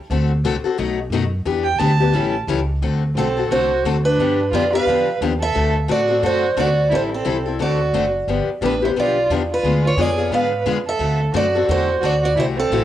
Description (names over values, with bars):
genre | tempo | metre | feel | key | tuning
acoustic string swing (jazz manouche) | 176 BPM | 4/4 | swing 59% on 8ths | D mixolydian | A4 = 440 Hz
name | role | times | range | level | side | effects
picked steel-string acoustic guitar | accompaniment | 0.1-12.8 s | B2 to A4 | -22 LUFS | left 7 dB | cassette tape
upright bass | bass | 0.1-12.8 s | F#1 to A2 | -22 LUFS | equal | none
warm violin | second line | 1.6-12.8 s | C4 to A5 | -23 LUFS | right 6 dB | cassette tape
picked steel-string acoustic guitar | melody | 3.2-12.8 s | A4 to F5 | -20 LUFS | right 1 dB | cassette tape, tape echo
room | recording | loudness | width
moderate studio reverb, RT60 0.6 s | home recording on cassette | -16 LUFS | side -12 dB against mid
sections
0.0-2.8 A section; 2.8-12.8 B section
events
violin solo 0.0-2.8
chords
0.1 D7; 0.8 B7; 1.5 Em7; 2.1 A7; 2.8 D7; 4.2 G7; 5.5 D7; 6.9 Am7; 7.6 D7; 8.3 G7; 9.6 G#dim7; 11.0 D7